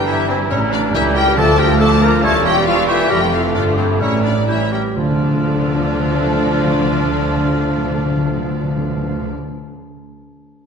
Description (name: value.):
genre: quick classical-period movement for symphony orchestra.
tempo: 122-140 BPM.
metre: 4/4.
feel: rubato.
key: D minor.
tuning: A4 = 436 Hz.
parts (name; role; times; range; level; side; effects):
warm symphonic violin section; melody; 0.0-9.3 s; C5 to Bb5; -23 LUFS; left 4 dB; none.
clear clarinet; second line; 0.0-9.3 s; C4 to Bb4; -24 LUFS; left 1 dB; none.
mellow small flute group; second line; 0.0-9.3 s; A5 to D6; -29 LUFS; right 2 dB; none.
warm symphonic violin section; second line; 0.0-9.3 s; A3 to F4; -26 LUFS; left 4 dB; none.
mellow bassoon; accompaniment; 0.0-9.3 s; E3 to A3; -24 LUFS; right 2 dB; none.
rich chamber viola section; accompaniment; 0.0-9.3 s; D3 to A3; -24 LUFS; right 2 dB; none.
mellow French horn section; sustained chords; 0.0-9.3 s; C3 to D4; -23 LUFS; left 2 dB; none.
rich chamber cello section; bass; 0.0-9.3 s; C#2 to A2; -23 LUFS; right 3 dB; none.
rich chamber double bass section; bass; 0.0-9.3 s; E1 to D2; -23 LUFS; right 1 dB; none.
warm oboe; second line; 0.1-9.3 s; E4 to D5; -26 LUFS; right 1 dB; none.
timpani; percussion; 0.5-9.3 s; A2 to D3; -23 LUFS; left 2 dB; none.
room: wet scoring stage reverb, RT60 1.6 s.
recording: minimal, uncompressed stereo recording.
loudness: -14 LUFS.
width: side -6 dB against mid.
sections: 0.0-5.0 A section; 5.0-8.7 B section.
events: slowing down 0.5-5.0.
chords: 0.0 Edim/G; 0.5 A7b9; 1.4 Dm; 2.2 A7/E; 3.1 Dm/F; 4.0 A7b9; 5.0 Dm.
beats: 0.07 0.50 0.94 | 1.37 1.80 2.23 2.67 | 3.10 3.55 4.01 4.48 | 4.97 5.44 5.91 6.39 | 6.87 7.33 7.80 8.27.